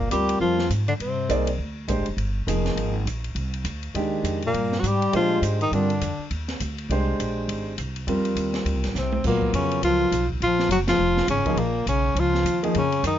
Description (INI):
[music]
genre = modal jazz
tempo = 204 BPM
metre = 4/4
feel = swing 60% on 8ths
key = Bb phrygian from 9.2 s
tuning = A4 = 440 Hz
[part]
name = breathy tenor saxophone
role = melody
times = 0.0-1.6, 4.5-6.3, 9.0-13.2 s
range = Bb3 to G4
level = -24 LUFS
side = right 1 dB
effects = none
[part]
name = warm bass clarinet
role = second line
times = 0.0-1.6, 4.4-6.3, 9.0-13.2 s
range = Bb2 to G3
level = -28 LUFS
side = left 7 dB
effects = none
[part]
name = upright bass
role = bass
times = 0.0-13.2 s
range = F1 to Bb2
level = -27 LUFS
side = right 1 dB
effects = none
[part]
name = warm concert grand piano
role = accompaniment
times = 0.1-12.7 s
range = Eb3 to D5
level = -26 LUFS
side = right 1 dB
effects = none
[part]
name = open jazz drum kit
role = drums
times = 0.1-13.1 s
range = crash cymbal, hi-hat, kick drum, ride cymbal, snare drum, toms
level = -33 LUFS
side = equal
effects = none
[sound]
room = light reverb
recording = nothing above 7.5 kHz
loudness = -21 LUFS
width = side -11 dB against mid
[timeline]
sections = 0.0-9.2 A section; 9.2-13.2 B section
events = drum fill 8.9; band accent 10.8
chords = 0.0 Fm; 4.5 Gm7; 6.9 Fm; 9.2 Bbm